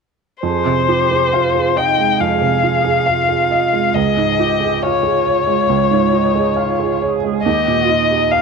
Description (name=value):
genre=neoclassical piano and strings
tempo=69 BPM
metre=4/4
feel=rubato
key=F minor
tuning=A4 = 442 Hz
part: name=muted violin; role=melody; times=0.4-8.4 s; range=C5 to G5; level=-16 LUFS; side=left 7 dB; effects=none
part: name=muted cello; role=second line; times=0.4-8.4 s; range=Eb4 to Ab4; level=-22 LUFS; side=right 10 dB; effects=tape echo
part: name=felt-muted upright piano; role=accompaniment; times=0.4-8.4 s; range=Db2 to F5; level=-18 LUFS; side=right 8 dB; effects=none
room=moderate plate reverb, RT60 2.9 s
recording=1960s-style stereo with parts hard left and right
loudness=-13 LUFS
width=side -5 dB against mid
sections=0.4-8.4 A section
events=none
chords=0.4 Fm7; 4.0 Db; 7.5 Ebadd9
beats=| 0.43 1.32 2.20 3.07 | 3.96 4.83 5.69 6.58 | 7.46 8.33